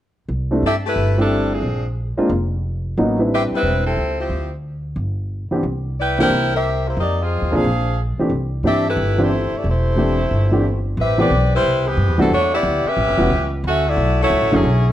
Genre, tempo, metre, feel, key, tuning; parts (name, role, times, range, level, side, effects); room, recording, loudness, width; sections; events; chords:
jazz, big band swing; 180 BPM; 4/4; swing 64% on 8ths; C major; A4 = 439 Hz
upright bass; bass; 0.3-14.9 s; E1 to G2; -20 LUFS; equal
warm baby grand piano; accompaniment; 0.5-14.6 s; D3 to B4; -20 LUFS; equal
bright saxophone section; melody; 0.6-14.9 s; E3 to G5; -19 LUFS; left 1 dB
light reverb; worn, warbling old tape, cassette tape, warbly pitch drift; -16 LUFS; side -12 dB against mid
0.3-11.0 A section; 11.0-14.9 B section
0.3 C69; 1.6 Bb5; 3.0 Am11; 4.3 Dm9; 5.0 G; 5.6 Cmaj9; 6.3 C7; 7.0 Fm7; 7.6 Bb9; 8.3 C69; 11.0 Am9; 12.3 Em7; 13.0 A13; 13.6 Dmaj9